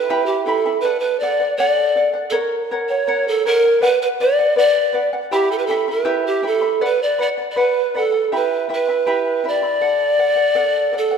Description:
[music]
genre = andean folk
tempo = 80 BPM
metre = 2/4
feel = straight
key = unclear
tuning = A4 = 439 Hz
[part]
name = breathy pan flute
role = melody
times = 0.0-11.2 s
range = G4 to D5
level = -17 LUFS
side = right 1 dB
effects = none
[part]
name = charango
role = accompaniment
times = 0.0-11.2 s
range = E4 to B5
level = -22 LUFS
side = equal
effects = none
[sound]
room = wet scoring stage reverb, RT60 1.6 s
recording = none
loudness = -16 LUFS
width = side -6 dB against mid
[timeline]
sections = 0.0-8.3 A section; 8.3-11.2 B section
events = none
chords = 0.0 Em; 0.8 D; 2.3 F#; 3.8 Bm; 5.3 Em; 6.8 Bm; 8.3 Em; 9.8 D

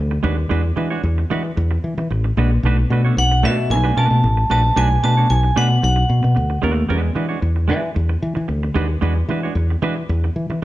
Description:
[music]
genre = disco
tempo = 113 BPM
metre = 4/4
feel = straight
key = unclear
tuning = A4 = 440 Hz
[part]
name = fingered electric bass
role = bass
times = 0.0-10.6 s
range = A1 to E3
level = -17 LUFS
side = equal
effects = none
[part]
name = semi-hollow electric guitar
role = accompaniment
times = 0.1-10.5 s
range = G#3 to C#5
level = -24 LUFS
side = right 5 dB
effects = none
[part]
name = vibraphone with hard mallets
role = melody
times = 3.2-6.6 s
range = E5 to A5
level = -20 LUFS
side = right 1 dB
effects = none
[sound]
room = moderate large studio reverb, RT60 1.2 s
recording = band playing live in one room, cassette tape, nothing above 10.5 kHz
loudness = -16 LUFS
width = side -15 dB against mid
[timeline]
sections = 0.0-10.6 A section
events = none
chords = 0.0 E9; 2.6 Bm7; 6.9 E9

